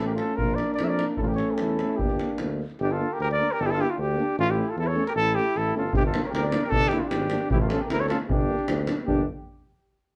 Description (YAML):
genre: balkan folk, Balkan brass band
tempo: 152 BPM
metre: 2/4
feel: straight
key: G dorian sharp4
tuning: A4 = 440 Hz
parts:
  - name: dark trumpet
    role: melody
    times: 0.0-9.2 s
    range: F4 to E5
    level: -30 LUFS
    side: equal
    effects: none
  - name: warm flugelhorn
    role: second line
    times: 0.0-9.3 s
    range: C#4 to C#5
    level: -35 LUFS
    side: equal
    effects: none
  - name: mellow French horn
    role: accompaniment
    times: 0.0-9.3 s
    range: C#4 to D4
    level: -34 LUFS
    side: equal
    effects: none
  - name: mellow euphonium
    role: accompaniment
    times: 0.0-9.2 s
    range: A3 to Bb3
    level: -35 LUFS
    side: equal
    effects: none
  - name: warm tuba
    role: bass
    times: 0.0-9.3 s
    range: G1 to F2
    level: -32 LUFS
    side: equal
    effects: none
  - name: davul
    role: percussion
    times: 0.2-2.7, 5.9-9.3 s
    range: none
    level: -31 LUFS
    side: equal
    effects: none
room: moderate small room reverb, RT60 0.5 s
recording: heard from further back in the room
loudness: -25 LUFS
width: mono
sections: 0.0-2.8 A section; 2.8-9.1 B section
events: speeding up 0.0-9.9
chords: 0.4 Bb; 1.2 A; 2.0 Gm; 4.4 A; 5.9 Gm; 7.5 A; 8.3 Gm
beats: | 0.38 0.79 | 1.19 1.59 | 1.99 2.39 | 2.79 3.18 | 3.58 3.98 | 4.37 4.77 | 5.16 5.55 | 5.95 6.34 | 6.73 7.12 | 7.52 7.91 | 8.30 8.69 | 9.08